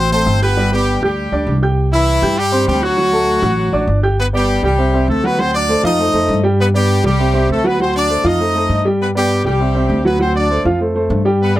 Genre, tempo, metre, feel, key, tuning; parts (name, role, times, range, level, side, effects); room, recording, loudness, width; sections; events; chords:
latin, salsa; 199 BPM; 4/4; straight; G major; A4 = 441 Hz
brilliant horn section; melody; 0.0-11.6 s; E3 to Eb5; -17 LUFS; left 1 dB
warm upright piano; accompaniment; 0.0-11.6 s; F3 to G6; -17 LUFS; right 1 dB
upright bass; bass; 0.0-11.6 s; G1 to G2; -17 LUFS; equal
little or no reverb; -13 LUFS; side -15 dB against mid
0.0-4.2 A section; 4.2-11.6 B section
0.0 D7(no3) (rootless); 0.6 G; 1.8 C; 3.0 D; 4.2 G; 4.8 C; 5.4 D7; 6.0 F7; 6.6 G; 7.2 C; 7.8 D7; 8.4 F7; 9.0 G; 9.6 C; 10.2 D7; 10.8 F